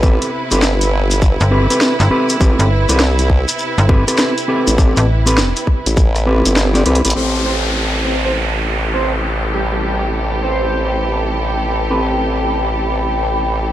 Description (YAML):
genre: glitch hop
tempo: 101 BPM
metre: 4/4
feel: swing 64% on 16ths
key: A minor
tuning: A4 = 440 Hz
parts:
  - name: clear studio string section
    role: sustained chords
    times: 0.0-13.7 s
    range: C3 to B4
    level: -23 LUFS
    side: right 2 dB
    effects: sidechain pumping, low-pass filter
  - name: mellow electric guitar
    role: stabs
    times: 0.0-13.7 s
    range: C4 to D5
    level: -19 LUFS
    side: equal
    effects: sidechain pumping, analog delay
  - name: formant-sweep wobble bass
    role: bass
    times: 0.0-13.7 s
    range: G1 to C2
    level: -18 LUFS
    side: equal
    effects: chorus, tube saturation
  - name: electronic kick drum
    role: drums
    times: 0.0-6.1 s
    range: none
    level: -12 LUFS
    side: equal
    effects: studio reverb
  - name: shekere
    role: percussion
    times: 0.0-7.1 s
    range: none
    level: -24 LUFS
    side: left 3 dB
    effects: none
  - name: deep dark ambient pad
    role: texture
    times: 0.0-13.7 s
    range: B4 to B5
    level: -25 LUFS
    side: right 1 dB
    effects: chorus, built-in reverb, sidechain pumping
  - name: drum and bass drum kit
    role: drums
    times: 0.2-7.2 s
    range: hi-hat, rim click, snare drum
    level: -18 LUFS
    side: equal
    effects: low-pass filter on hats, studio reverb, low-pass filter on snare
  - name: slap-like FM bass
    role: bass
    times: 1.4-5.5 s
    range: G1 to A1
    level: -13 LUFS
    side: equal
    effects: none
  - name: downlifter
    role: sound effects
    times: 7.2-11.9 s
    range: none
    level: -22 LUFS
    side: equal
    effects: none
  - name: sync lead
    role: melody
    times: 7.5-11.0 s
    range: G4 to C5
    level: -23 LUFS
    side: right 2 dB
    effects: lush chorus, analog delay
room: digital ambience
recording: dry, gritty hardware recording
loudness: -13 LUFS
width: side -13 dB against mid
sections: 0.0-7.2 A section; 7.2-13.7 B section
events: band accent 6.6; drum fill 6.9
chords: 0.0 Am9